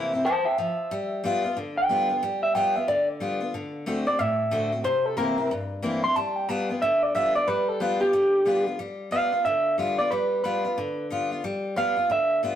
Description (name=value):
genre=rock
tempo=183 BPM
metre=4/4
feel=swing 62% on 8ths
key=G mixolydian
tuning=A4 = 440 Hz
part: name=electric guitar through a small old amp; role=melody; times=0.0-12.4 s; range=G4 to C6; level=-23 LUFS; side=right 1 dB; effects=none
part: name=picked steel-string acoustic guitar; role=accompaniment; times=0.0-12.6 s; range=G2 to F#4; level=-28 LUFS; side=left 2 dB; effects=none
room=wet stone room reverb, RT60 1.0 s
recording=rough rehearsal-room recording, warm saturation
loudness=-22 LUFS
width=side -10 dB against mid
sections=0.0-8.8 A section; 8.8-12.6 B section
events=clean electric guitar solo 0.0-8.8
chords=0.0 C7; 0.9 G7; 3.5 D7; 4.8 C7; 6.2 G7